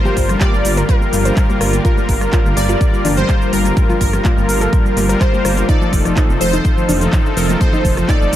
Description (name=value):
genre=progressive house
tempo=125 BPM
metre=4/4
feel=straight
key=G minor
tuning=A4 = 439 Hz
part: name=plucky unison lead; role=melody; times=0.0-8.4 s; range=Bb4 to D5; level=-22 LUFS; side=right 1 dB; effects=analog chorus, dub echo
part: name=lush unison pad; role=sustained chords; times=0.0-8.4 s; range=D3 to F4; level=-24 LUFS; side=right 1 dB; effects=chorus, sidechain pumping
part: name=soft supersaw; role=stabs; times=0.0-8.4 s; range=F3 to Bb4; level=-21 LUFS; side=left 3 dB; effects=cassette tape, sidechain pumping, dub echo
part: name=congas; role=percussion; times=0.0-8.2 s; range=none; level=-28 LUFS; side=left 3 dB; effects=none
part: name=soft round pluck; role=arpeggios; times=0.1-8.4 s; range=F3 to C5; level=-23 LUFS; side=equal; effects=chorus, sidechain pumping, dub echo
part: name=big-room dance drum kit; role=drums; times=0.1-8.4 s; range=cabasa, handclaps, hi-hat, rim click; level=-25 LUFS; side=equal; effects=overdrive, sidechain pumping on hats, sidechain pumping on perc, sidechain pumping on cymbals
part: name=dark detuned saw bass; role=bass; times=0.2-8.4 s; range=F1 to G1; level=-19 LUFS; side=equal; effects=sidechain pumping
part: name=electronic kick drum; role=drums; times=0.2-8.2 s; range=none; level=-15 LUFS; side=equal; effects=none
room=little or no reverb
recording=dark, warm production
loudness=-12 LUFS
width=side -12 dB against mid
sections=0.0-8.4 A section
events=none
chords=0.0 Gm7; 5.7 F7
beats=0.41 0.89 1.37 | 1.85 2.33 2.81 3.29 | 3.77 4.25 4.73 5.21 | 5.69 6.17 6.65 7.13 | 7.61 8.09